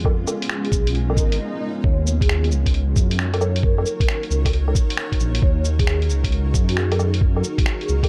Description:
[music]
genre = future garage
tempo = 134 BPM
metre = 4/4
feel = swing 66% on 16ths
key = Eb minor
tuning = A4 = 435 Hz
[part]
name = granular cloud pad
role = sustained chords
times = 0.0-8.1 s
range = Ab3 to Db5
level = -32 LUFS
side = equal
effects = built-in reverb, sidechain pumping
[part]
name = dark detuned saw bass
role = bass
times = 0.0-8.1 s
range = Ab1 to Gb2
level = -23 LUFS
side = equal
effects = sidechain pumping
[part]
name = electronic kick drum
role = drums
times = 0.0-8.1 s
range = none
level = -22 LUFS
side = equal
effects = none
[part]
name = lo-fi sampler-style drum kit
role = drums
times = 0.1-8.1 s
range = cabasa, finger snaps, hi-hat, woodblock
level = -29 LUFS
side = equal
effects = none
[part]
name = vibraphone with soft mallets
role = melody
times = 0.6-8.0 s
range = Gb4 to Db5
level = -32 LUFS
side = equal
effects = tape echo
[part]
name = swell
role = sound effects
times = 1.2-1.8 s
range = none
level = -36 LUFS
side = equal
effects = none
[sound]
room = digital ambience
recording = dark, warm production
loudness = -20 LUFS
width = mono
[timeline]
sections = 0.0-1.8 A section; 1.8-8.1 B section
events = swell 1.2-1.8; break 1.4-1.8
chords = 0.0 Db7; 1.8 Ebm7

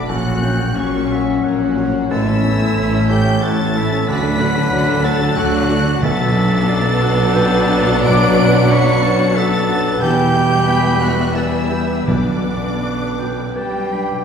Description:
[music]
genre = cinematic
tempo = 90 BPM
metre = 3/4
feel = uneven beats, rubato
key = B minor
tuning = A4 = 439 Hz
[part]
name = rich studio violin section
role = melody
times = 0.0-14.2 s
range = G5 to D7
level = -26 LUFS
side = left 2 dB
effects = none
[part]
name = bright oboe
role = second line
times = 0.0-14.2 s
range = D5 to B5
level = -28 LUFS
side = right 1 dB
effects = none
[part]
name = clear clarinet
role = second line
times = 0.0-14.2 s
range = C#4 to D5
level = -25 LUFS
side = left 1 dB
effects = none
[part]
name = concert flute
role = second line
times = 0.0-14.2 s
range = C#5 to D6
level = -25 LUFS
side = equal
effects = none
[part]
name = rich studio violin section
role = second line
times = 0.0-14.0 s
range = F#4 to A5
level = -27 LUFS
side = left 1 dB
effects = none
[part]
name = rich studio viola section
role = accompaniment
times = 0.0-14.0 s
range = F#3 to A4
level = -25 LUFS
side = right 1 dB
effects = none
[part]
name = warm baby grand piano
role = accompaniment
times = 0.0-14.2 s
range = A1 to D5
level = -23 LUFS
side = equal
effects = none
[part]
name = mellow French horn section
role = sustained chords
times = 0.0-13.9 s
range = D3 to D4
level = -22 LUFS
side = left 3 dB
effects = none
[part]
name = concert harp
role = arpeggios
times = 0.0-14.2 s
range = A2 to D6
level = -24 LUFS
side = left 2 dB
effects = none
[part]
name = warm studio cello section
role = bass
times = 0.1-14.2 s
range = E2 to G3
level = -22 LUFS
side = right 2 dB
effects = none
[part]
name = warm studio double bass section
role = bass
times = 0.1-14.0 s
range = E1 to D2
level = -23 LUFS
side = right 3 dB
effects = none
[part]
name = timpani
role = percussion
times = 6.0-7.0, 12.1-13.1 s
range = B2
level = -24 LUFS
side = right 1 dB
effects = none
[sound]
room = wet scoring stage reverb, RT60 1.7 s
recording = heard from further back in the room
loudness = -14 LUFS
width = side -7 dB against mid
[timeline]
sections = 0.0-14.2 A section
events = none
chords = 0.1 F#/A#; 2.1 A; 4.1 D; 6.0 Bm7; 10.0 Em; 12.1 Bm

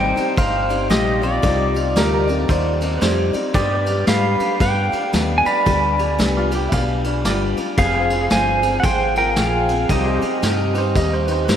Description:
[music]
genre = honky-tonk and classic country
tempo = 113 BPM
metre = 4/4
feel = swing 61% on 8ths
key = C minor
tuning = A4 = 441 Hz
[part]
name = pedal steel guitar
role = melody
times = 0.0-11.5 s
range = F4 to B5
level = -20 LUFS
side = right 1 dB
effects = none
[part]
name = picked steel-string acoustic guitar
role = accompaniment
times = 0.0-11.6 s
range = C3 to D5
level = -23 LUFS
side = left 4 dB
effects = none
[part]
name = pedal steel guitar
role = sustained chords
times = 0.0-11.6 s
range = Eb4 to F5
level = -31 LUFS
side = right 1 dB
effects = none
[part]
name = deep dub fingered electric bass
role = bass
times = 0.0-11.6 s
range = F1 to Ab2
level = -23 LUFS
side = equal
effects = none
[part]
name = vintage brush drum kit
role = drums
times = 0.2-11.6 s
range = kick drum, ride cymbal, snare drum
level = -23 LUFS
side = equal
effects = none
[part]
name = bright upright piano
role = second line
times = 2.0-11.6 s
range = F4 to F5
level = -28 LUFS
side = right 4 dB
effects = none
[sound]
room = wet cathedral reverb, RT60 7.0 s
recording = in a vast, echoing space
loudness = -16 LUFS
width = side -9 dB against mid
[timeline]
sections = 0.0-11.6 A section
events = none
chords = 0.0 Cmadd9; 3.5 G; 7.8 Fm; 9.9 Cm

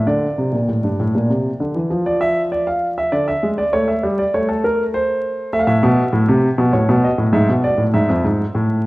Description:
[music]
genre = classical, baroque-style two-part invention for grand piano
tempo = 99 BPM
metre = 3/4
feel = straight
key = D minor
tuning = A4 = 442 Hz
[part]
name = warm grand piano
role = solo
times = 0.0-8.9 s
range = F2 to F5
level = -15 LUFS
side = equal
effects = none
[sound]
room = wet recital hall reverb, RT60 1.4 s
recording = worn, warbling old tape, cassette tape, vinyl crackle, warbly pitch drift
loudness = -15 LUFS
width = side -20 dB against mid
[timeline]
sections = 0.0-1.9 A section; 1.9-8.9 B section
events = none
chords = 0.1 D5; 1.9 Dm/F; 3.1 E7/D; 3.7 A7; 4.9 Am; 6.7 B7/A; 7.3 E7/G#

